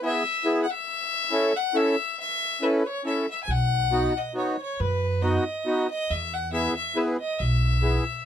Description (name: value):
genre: alpine folk, alpine dance band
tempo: 138 BPM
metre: 3/4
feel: swing 55% on 8ths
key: E major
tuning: A4 = 440 Hz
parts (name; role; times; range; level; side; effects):
- rich fiddle; melody; 0.0-8.3 s; B4 to G#5; -27 LUFS; left 3 dB; none
- accordion; accompaniment; 0.0-8.0 s; B3 to A4; -24 LUFS; equal; none
- upright bass; bass; 3.5-8.0 s; B1 to F#2; -25 LUFS; right 1 dB; none
room: light reverb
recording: close, detailed microphones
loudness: -23 LUFS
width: side -10 dB against mid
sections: 0.0-8.3 A section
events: none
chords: 0.0 E; 0.9 A; 3.5 B; 6.1 E